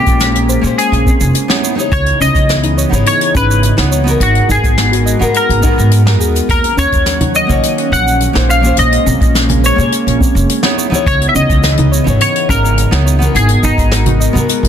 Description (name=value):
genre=sunset chillout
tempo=105 BPM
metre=4/4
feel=straight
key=unclear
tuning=A4 = 440 Hz
part: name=semi-hollow electric guitar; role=melody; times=0.0-14.7 s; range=Eb4 to Gb5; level=-16 LUFS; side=left 1 dB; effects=analog chorus, tape echo
part: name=nylon-string guitar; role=accompaniment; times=0.0-14.7 s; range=Ab3 to Db5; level=-19 LUFS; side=left 1 dB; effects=auto-pan, tape echo
part: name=airy breathy pad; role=sustained chords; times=0.0-14.7 s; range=Db3 to Gb5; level=-20 LUFS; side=equal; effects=chorus
part: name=upright bass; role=bass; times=0.1-14.7 s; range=F1 to Bb2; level=-13 LUFS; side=equal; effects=none
part: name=electronic kick drum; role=drums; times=0.1-13.9 s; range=none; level=-15 LUFS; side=equal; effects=none
part: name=soft brush drum kit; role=drums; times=0.1-14.7 s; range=hi-hat, shaker, snare drum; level=-19 LUFS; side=equal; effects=soft clipping on snare
part: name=soft round pluck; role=arpeggios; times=0.3-14.3 s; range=C4 to Eb5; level=-23 LUFS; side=left 2 dB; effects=chorus, tape echo
part: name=congas and bongos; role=percussion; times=7.2-14.5 s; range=none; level=-20 LUFS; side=right 2 dB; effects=none
room=light reverb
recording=dense, heavily limited modern master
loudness=-9 LUFS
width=side -9 dB against mid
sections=0.0-14.7 A section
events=none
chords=0.0 Bbm9; 1.6 Dbm9; 4.2 Abm9; 6.5 Ebm7; 8.5 Bbm9; 10.8 Dbm9; 13.3 Abm9